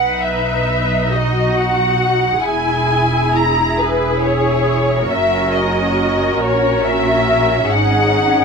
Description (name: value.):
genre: classical, slow romantic movement for string orchestra.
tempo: 46 BPM (dotted quarters).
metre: 6/8.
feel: rubato.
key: B major.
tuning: A4 = 440 Hz.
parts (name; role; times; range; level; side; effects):
muted symphonic violin section; melody; 0.0-8.4 s; B4 to A#5; -19 LUFS; left 2 dB; none.
muted symphonic violin section; second line; 0.0-8.4 s; B4 to A#5; -21 LUFS; equal; none.
muted symphonic viola section; accompaniment; 0.0-8.4 s; C#4 to B4; -19 LUFS; equal; none.
muted symphonic double bass section; bass; 0.0-8.4 s; E1 to B1; -20 LUFS; right 2 dB; none.
muted symphonic cello section; bass; 1.1-8.4 s; D#4 to G#4; -22 LUFS; right 2 dB; none.
room: light reverb.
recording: minimal, uncompressed stereo recording.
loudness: -13 LUFS.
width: side -5 dB against mid.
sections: 0.0-8.4 A section.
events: none.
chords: 0.0 B; 2.5 E; 5.1 F#; 7.7 G#5.